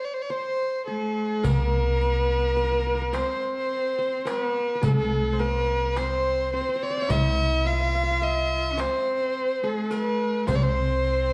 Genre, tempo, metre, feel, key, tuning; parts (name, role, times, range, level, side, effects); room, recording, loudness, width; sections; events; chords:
Arabic maqam ensemble; 106 BPM (eighths); 10/8; straight; C maqam huzam; A4 = 440 Hz
warm violin; melody; 0.0-11.3 s; Ab4+49c to F5-44c; -28 LUFS; equal
qanun; second line; 0.3-11.3 s; Ab4+50c to F5-40c; -37 LUFS; equal
clear cello; second line; 0.9-11.3 s; Ab3+48c to F4-36c; -34 LUFS; equal
upright bass; bass; 1.4-11.3 s; C2; -29 LUFS; equal
darbuka; percussion; 1.4-11.2 s; -30 LUFS; equal
riq; percussion; 1.4-11.2 s; -39 LUFS; equal
moderate recital hall reverb, RT60 1.5 s; worn, warbling old tape, cassette tape, warbly pitch drift; -25 LUFS; mono
0.0-1.4 A section; 1.4-11.3 B section
break 0.0-1.4